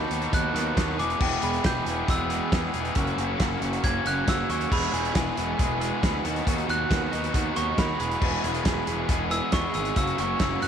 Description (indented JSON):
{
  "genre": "indie rock",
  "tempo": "137 BPM",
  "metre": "4/4",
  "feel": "straight",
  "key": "E lydian",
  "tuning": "A4 = 440 Hz",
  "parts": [
    { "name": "glockenspiel with soft plastic mallets", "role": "melody", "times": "0.0-10.7 s", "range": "G5 to G#6", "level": "-30 LUFS", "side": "right 1 dB", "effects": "slapback echo" },
    { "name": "biting overdriven guitar", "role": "riff", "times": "0.0-10.7 s", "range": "E2 to G#4", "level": "-31 LUFS", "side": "right 14 dB", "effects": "analog chorus, slapback echo" },
    { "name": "crunchy overdriven guitar", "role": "riff", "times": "0.0-10.7 s", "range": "E2 to G#4", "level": "-30 LUFS", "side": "left 14 dB", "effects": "none" },
    { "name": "fuzz picked electric bass", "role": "bass", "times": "0.0-10.7 s", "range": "E1 to E2", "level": "-31 LUFS", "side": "equal", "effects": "overdrive" },
    { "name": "loose indie drum kit", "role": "drums", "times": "0.1-10.7 s", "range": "crash cymbal, hi-hat, kick drum, snare drum", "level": "-28 LUFS", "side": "equal", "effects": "none" },
    { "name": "dark analog pad", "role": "sustained chords", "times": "4.7-10.7 s", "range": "E4 to B5", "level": "-40 LUFS", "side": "right 11 dB", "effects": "none" }
  ],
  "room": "light reverb, small room ambience",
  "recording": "1960s-style stereo with parts hard left and right",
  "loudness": "-23 LUFS",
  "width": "side -8 dB against mid",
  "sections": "0.0-10.7 A section",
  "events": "glockenspiel solo 0.0-10.7",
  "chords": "0.0 B/D#; 1.0 E; 3.0 F#; 4.7 Emaj7; 6.2 B6/D#; 8.0 Emaj7; 10.0 F#add9",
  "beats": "0.32 0.76 | 1.20 1.64 2.08 2.52 | 2.96 3.40 3.83 4.27 | 4.71 5.15 5.59 6.03 | 6.46 6.90 7.34 7.78 | 8.21 8.65 9.09 9.53 | 9.96 10.40"
}